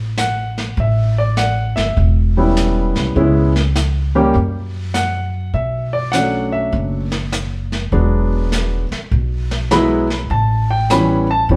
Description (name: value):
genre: jazz piano trio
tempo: 101 BPM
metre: 4/4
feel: swing 66% on 8ths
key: A mixolydian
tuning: A4 = 439 Hz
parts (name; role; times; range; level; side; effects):
- upright bass; bass; 0.0-11.6 s; E1 to F#2; -20 LUFS; equal; none
- warm grand piano; melody; 0.2-11.6 s; E3 to B5; -20 LUFS; equal; none
- jazz brush drum kit; drums; 0.2-11.6 s; brushed snare drum, hi-hat, kick drum, snare drum; -27 LUFS; equal; none
room: moderate stone room reverb, RT60 1.0 s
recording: band playing live in one room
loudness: -17 LUFS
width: mono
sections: 0.0-11.6 A section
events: none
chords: 0.0 D#dim (rootless); 0.8 A7; 3.2 C#m7; 4.3 N.C.; 5.5 Bm7; 7.9 E7; 10.3 A7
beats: 0.17 | 0.77 1.37 1.96 2.56 | 3.15 3.75 4.34 4.94 | 5.54 6.13 6.73 7.32 | 7.92 8.51 9.11 9.71 | 10.30 10.90 11.49